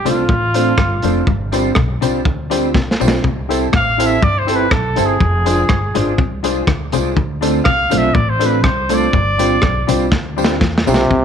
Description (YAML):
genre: ska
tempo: 122 BPM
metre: 4/4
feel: straight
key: unclear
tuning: A4 = 440 Hz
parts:
  - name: warm trumpet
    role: melody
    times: 0.0-10.2 s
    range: F4 to F5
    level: -18 LUFS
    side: equal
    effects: none
  - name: warm upright piano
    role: stabs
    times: 0.0-11.0 s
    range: D4 to C5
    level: -21 LUFS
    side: left 12 dB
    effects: none
  - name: mellow electric guitar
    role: accompaniment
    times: 0.1-11.0 s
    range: G3 to A4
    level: -21 LUFS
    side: right 12 dB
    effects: analog chorus, slapback echo
  - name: clean electric guitar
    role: riff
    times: 0.1-11.2 s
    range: F2 to E3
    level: -24 LUFS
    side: left 10 dB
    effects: harmonic tremolo
  - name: upright bass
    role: bass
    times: 0.1-11.2 s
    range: F1 to E2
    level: -21 LUFS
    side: equal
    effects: none
  - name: crunchy breakbeat drum kit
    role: drums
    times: 0.1-11.2 s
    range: hi-hat, kick drum, rim click, snare drum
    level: -18 LUFS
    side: equal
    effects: none
  - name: tambourine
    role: percussion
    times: 0.1-11.0 s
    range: none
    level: -33 LUFS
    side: right 15 dB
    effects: none
  - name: clear trombone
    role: melody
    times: 10.9-11.2 s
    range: C3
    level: -13 LUFS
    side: right 1 dB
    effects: none
room: light reverb, studio ambience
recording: 1960s-style stereo with parts hard left and right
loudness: -13 LUFS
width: side -8 dB against mid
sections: 0.0-11.1 A section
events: trumpet solo 0.0-11.1; drum fill 2.7-3.2, 10.1-11.1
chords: 0.0 Dm7; 1.3 G7sus4; 3.2 C6; 5.2 Fm6; 7.2 Dm7; 9.1 G7sus4